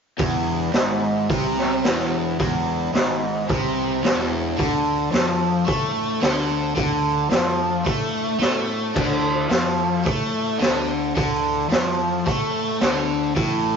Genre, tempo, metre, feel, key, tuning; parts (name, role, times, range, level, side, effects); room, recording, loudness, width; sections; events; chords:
psychedelic rock; 109 BPM; 4/4; straight; A4 = 441 Hz
overdriven combo organ; sustained chords; 0.2-13.8 s; A3 to A4; -37 LUFS; right 3 dB
crunchy overdriven guitar; riff; 0.2-13.8 s; E2 to A3; -22 LUFS; equal; phaser
fuzz fingered electric bass; bass; 0.2-13.8 s; E1 to A2; -32 LUFS; equal; overdrive
raw garage drum kit; drums; 0.2-13.5 s; crash cymbal, hi-hat, kick drum, snare drum; -23 LUFS; equal
moderate stone room reverb, RT60 1.0 s; rough rehearsal-room recording, nothing above 7.5 kHz; -19 LUFS; side -6 dB against mid
0.2-13.8 A section
0.2 E; 4.6 D5